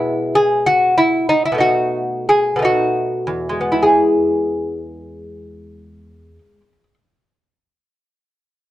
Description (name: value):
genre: classical, baroque-style dance for lute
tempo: 49-67 BPM (dotted quarters)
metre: 12/8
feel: rubato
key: E major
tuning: A4 = 438 Hz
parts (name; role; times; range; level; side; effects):
- lute; solo; 0.0-6.9 s; E2 to G#4; -15 LUFS; equal; none
room: light reverb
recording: dark, warm production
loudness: -14 LUFS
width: side -14 dB against mid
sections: 0.0-3.8 A section; 3.8-8.5 B section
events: slowing down 0.0-3.8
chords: 0.0 E/B; 1.6 B7; 3.8 E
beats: 0.66 1.62 2.66 | 3.83 4.99 6.16